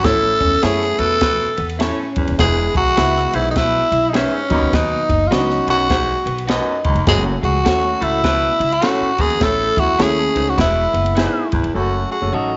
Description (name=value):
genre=uptempo 1960s-style soul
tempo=102 BPM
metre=4/4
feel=swing 62% on 8ths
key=E major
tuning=A4 = 440 Hz
part: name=growling tenor saxophone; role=melody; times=0.0-12.6 s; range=C#4 to A4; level=-20 LUFS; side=equal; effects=none
part: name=warm baby grand piano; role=accompaniment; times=0.0-12.6 s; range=F#3 to A4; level=-27 LUFS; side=equal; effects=none
part: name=raspy baritone saxophone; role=riff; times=0.0-12.0 s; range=D#2 to B2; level=-28 LUFS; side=equal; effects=none
part: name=upright bass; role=bass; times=0.0-12.6 s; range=D#1 to F#2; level=-25 LUFS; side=equal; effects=none
part: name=compact cocktail drum kit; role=drums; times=0.0-11.7 s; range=kick drum, ride cymbal, snare drum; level=-25 LUFS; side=equal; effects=none
part: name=electric guitar through a small old amp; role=riff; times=0.4-12.6 s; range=B3 to G#4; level=-28 LUFS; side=equal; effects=lush chorus
part: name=electric guitar through a small old amp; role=stabs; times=0.6-12.5 s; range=B3 to E5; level=-28 LUFS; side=equal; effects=slapback echo
room=light reverb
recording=nothing above 7.7 kHz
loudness=-17 LUFS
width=mono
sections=0.0-11.8 A section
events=none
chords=0.1 A; 2.4 E; 4.4 B; 7.1 F#m; 9.4 A; 10.6 E; 11.8 F#m